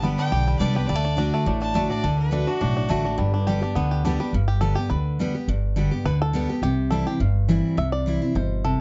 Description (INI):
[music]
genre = bluegrass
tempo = 209 BPM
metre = 4/4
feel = swing 53% on 8ths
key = G major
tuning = A4 = 440 Hz
[part]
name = bluegrass banjo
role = melody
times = 0.0-8.8 s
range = G3 to E5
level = -31 LUFS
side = equal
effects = none
[part]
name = picked steel-string acoustic guitar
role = accompaniment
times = 0.0-8.8 s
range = G2 to G4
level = -26 LUFS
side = equal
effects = none
[part]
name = upright bass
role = bass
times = 0.0-8.7 s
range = G1 to D2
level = -28 LUFS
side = equal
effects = none
[part]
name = clear fiddle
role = second line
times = 0.2-3.0 s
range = F#4 to A5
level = -34 LUFS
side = equal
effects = plate reverb
[sound]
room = moderate studio reverb, RT60 0.6 s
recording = dark, warm production, nothing above 7.9 kHz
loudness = -23 LUFS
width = mono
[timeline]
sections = 0.0-4.3 A section; 4.3-8.8 A section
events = fiddle solo 0.0-4.3; five-string banjo solo 4.3-8.8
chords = 0.0 G; 0.9 D; 3.2 G; 6.6 C